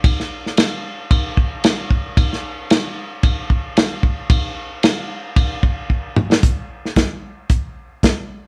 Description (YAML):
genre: blues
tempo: 113 BPM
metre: 4/4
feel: swing 55% on 16ths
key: none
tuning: none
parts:
  - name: warm soul drum kit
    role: drums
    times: 0.0-8.2 s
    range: hi-hat, kick drum, ride cymbal, snare drum, toms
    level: -18 LUFS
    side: equal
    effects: none
room: wet studio reverb, RT60 0.8 s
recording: band playing live in one room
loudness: -19 LUFS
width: mono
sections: 0.0-6.4 A section; 6.4-8.5 B section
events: drum fill 5.9-6.4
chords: none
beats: | 0.04 0.58 1.11 1.64 | 2.17 2.71 3.24 3.77 | 4.31 4.84 5.37 5.90 | 6.44 6.97 7.50 8.04